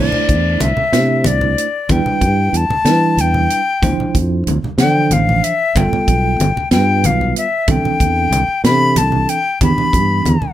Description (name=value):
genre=electric jazz fusion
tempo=62 BPM (dotted quarters)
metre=6/8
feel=straight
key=unclear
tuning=A4 = 441 Hz
part: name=bright jazz flute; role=melody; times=0.0-10.5 s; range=D5 to B5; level=-17 LUFS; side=left 4 dB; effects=slapback echo
part: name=bell-like tine electric piano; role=accompaniment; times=0.0-10.3 s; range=E3 to C5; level=-20 LUFS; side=right 5 dB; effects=fast stereo tremolo
part: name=fretless electric bass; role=bass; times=0.0-10.4 s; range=G1 to E3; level=-16 LUFS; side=equal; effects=none
part: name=congas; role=percussion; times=0.1-10.5 s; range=none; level=-20 LUFS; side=equal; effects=none
part: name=tight funk drum kit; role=drums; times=0.3-10.4 s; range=hi-hat, kick drum, snare drum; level=-18 LUFS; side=equal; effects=none
room=light reverb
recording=none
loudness=-12 LUFS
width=side -12 dB against mid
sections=0.0-10.5 A section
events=flute solo 0.0-10.5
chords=0.0 C69; 1.9 Em7; 3.8 Dm9; 5.8 G9; 7.7 C69; 9.6 Em7